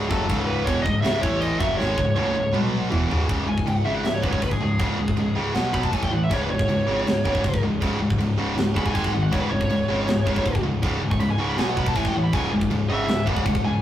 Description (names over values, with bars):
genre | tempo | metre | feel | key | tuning
heavy metal | 160 BPM | 4/4 | straight | C# minor | A4 = 440 Hz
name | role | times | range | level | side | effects
high-gain lead guitar | melody | 0.0-13.8 s | G#4 to C#6 | -27 LUFS | equal | distortion
high-gain distorted guitar | riff | 0.0-13.8 s | C#2 to B3 | -27 LUFS | right 2 dB | distortion
scooped high-gain guitar | riff | 0.0-13.8 s | C#2 to B3 | -26 LUFS | left 3 dB | distortion
thick fuzz guitar | riff | 0.0-13.8 s | C#2 to B3 | -31 LUFS | equal | distortion
growling picked electric bass | bass | 0.0-13.8 s | C#1 to B1 | -31 LUFS | equal | overdrive
tight metal drum kit | drums | 0.1-13.6 s | crash cymbal, kick drum, snare drum, toms | -26 LUFS | equal | none
room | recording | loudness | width
moderate booth ambience, RT60 0.3 s | rough rehearsal-room recording | -20 LUFS | side -11 dB against mid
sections
0.0-3.3 A section; 3.3-13.8 B section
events
drum fill 1.8-3.3; lead electric guitar solo 3.3-13.8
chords
0.0 C#m; 1.2 A5; 1.6 C#5; 2.5 B5; 2.9 C#m; 3.3 C#5; 5.6 B5; 5.9 A5; 6.3 C#5; 8.9 G#5; 9.3 C#5; 11.6 B5; 12.0 A5; 12.3 C#m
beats
| 0.29 0.67 1.04 1.42 | 1.79 2.17 2.54 2.92 | 3.29 3.67 4.05 4.42 | 4.80 5.18 5.55 5.93 | 6.31 6.68 7.06 7.44 | 7.81 8.19 8.57 8.95 | 9.32 9.70 10.08 10.45 | 10.83 11.21 11.58 11.96 | 12.33 12.71 13.08 13.46